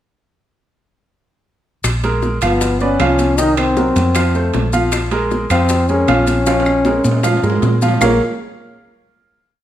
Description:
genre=Afro-Cuban jazz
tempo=156 BPM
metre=4/4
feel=straight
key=Bb minor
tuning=A4 = 440 Hz
part: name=hollow-body short-scale fingered electric bass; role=bass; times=1.8-8.2 s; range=G1 to Bb2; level=-18 LUFS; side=equal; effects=none
part: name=bongos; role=percussion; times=1.8-8.1 s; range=none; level=-27 LUFS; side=left 6 dB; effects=none
part: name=claves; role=percussion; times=1.8-8.1 s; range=none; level=-28 LUFS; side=left 1 dB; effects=none
part: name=congas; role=percussion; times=1.8-8.1 s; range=none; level=-24 LUFS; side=equal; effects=none
part: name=maracas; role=percussion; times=1.8-8.1 s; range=none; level=-29 LUFS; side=left 6 dB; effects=none
part: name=timbales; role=percussion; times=1.8-8.1 s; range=none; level=-25 LUFS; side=right 6 dB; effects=none
part: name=clear upright piano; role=accompaniment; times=2.0-8.2 s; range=Eb3 to F5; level=-18 LUFS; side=right 2 dB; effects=none
part: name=breathy trombone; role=melody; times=2.4-8.2 s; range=Bb3 to Eb4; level=-17 LUFS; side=left 2 dB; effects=none
room=moderate large studio reverb, RT60 1.3 s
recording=none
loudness=-13 LUFS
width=side -11 dB against mid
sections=1.8-8.0 A section; 8.0-9.6 final chord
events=drum fill 6.5-8.0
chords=1.8 Bb5; 2.6 G7; 3.4 Cm7b5; 4.2 F; 4.9 Bbm7

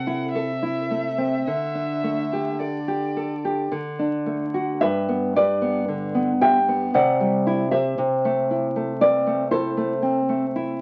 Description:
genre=romantic duo for violin and classical guitar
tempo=52-60 BPM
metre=3/4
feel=rubato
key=G major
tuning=A4 = 444 Hz
part: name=rich violin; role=melody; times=0.0-3.7 s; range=D5 to F#5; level=-31 LUFS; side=equal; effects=none
part: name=nylon-string guitar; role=accompaniment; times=0.0-10.8 s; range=G2 to G5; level=-23 LUFS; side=equal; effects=none
room=moderate small room reverb, RT60 0.5 s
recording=very old 78 rpm record, vinyl crackle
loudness=-23 LUFS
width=mono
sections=0.0-4.8 A section; 4.8-10.8 B section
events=none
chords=0.0 Am/C; 1.5 Dsus4; 3.7 D; 4.8 G; 7.0 C; 8.0 Am/C

